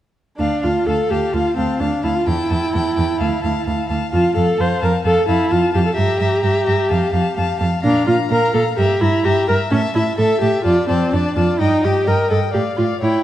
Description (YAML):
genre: quick classical-period movement for string quartet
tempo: 128 BPM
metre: 4/4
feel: straight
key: D minor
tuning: A4 = 440 Hz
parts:
  - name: rich violin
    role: melody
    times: 0.4-13.2 s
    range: F5 to Bb5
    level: -27 LUFS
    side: left 6 dB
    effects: none
  - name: rich violin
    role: second line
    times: 0.4-13.2 s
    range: C#5 to G5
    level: -24 LUFS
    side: left 4 dB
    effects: none
  - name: warm viola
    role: accompaniment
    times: 0.4-13.2 s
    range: C4 to C5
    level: -18 LUFS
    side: equal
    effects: none
  - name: rich cello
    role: bass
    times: 0.4-13.1 s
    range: D2 to Bb2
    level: -20 LUFS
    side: right 2 dB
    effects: none
room: wet recital hall reverb, RT60 1.7 s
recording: dark, warm production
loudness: -15 LUFS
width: side -12 dB against mid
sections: 0.4-13.2 A section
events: none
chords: 0.4 Dm; 2.3 A5/E; 3.2 Dm; 4.1 F; 6.0 Gm6; 6.9 F; 7.8 Bb5; 8.8 Edim/G; 9.7 A5; 10.7 Dm/F; 11.6 Eb/G; 12.5 Dm/A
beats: | 0.39 0.87 1.34 1.80 | 2.27 2.73 3.20 3.67 | 4.13 4.59 5.05 5.51 | 5.97 6.43 6.91 7.37 | 7.84 8.31 8.78 9.24 | 9.71 10.18 10.65 11.13 | 11.60 12.07 12.54 13.02